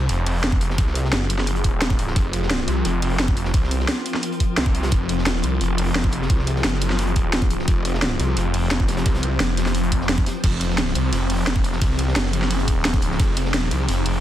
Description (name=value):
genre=dark technical drum and bass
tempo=174 BPM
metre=4/4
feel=straight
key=F phrygian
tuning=A4 = 439 Hz
part: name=swarming drone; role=sustained chords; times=0.0-14.2 s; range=F3 to C5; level=-27 LUFS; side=left 2 dB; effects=built-in reverb, sidechain pumping
part: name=snarling distorted saw bass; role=bass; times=0.0-14.2 s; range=Eb1 to C2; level=-22 LUFS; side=equal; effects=tube saturation
part: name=crunchy breakbeat drum kit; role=drums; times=0.1-14.1 s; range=hi-hat, snare drum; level=-34 LUFS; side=equal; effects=none
part: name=drum and bass drum kit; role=drums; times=0.1-14.1 s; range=crash cymbal, hi-hat, ride cymbal, snare drum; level=-24 LUFS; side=right 1 dB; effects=none
part: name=electronic kick drum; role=drums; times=0.5-13.3 s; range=none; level=-20 LUFS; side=equal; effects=none
room=studio reverb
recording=dense, heavily limited modern master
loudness=-18 LUFS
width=side -12 dB against mid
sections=0.0-14.2 A section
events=none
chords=0.0 Fm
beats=0.09 0.44 | 0.78 1.13 1.47 1.82 | 2.16 2.51 2.85 3.20 | 3.54 3.88 4.23 4.58 | 4.92 5.26 5.61 5.95 | 6.30 6.64 6.99 7.33 | 7.68 8.02 8.37 8.71 | 9.06 9.40 9.75 10.09 | 10.44 10.78 11.13 11.47 | 11.82 12.16 12.51 12.85 | 13.20 13.54 13.88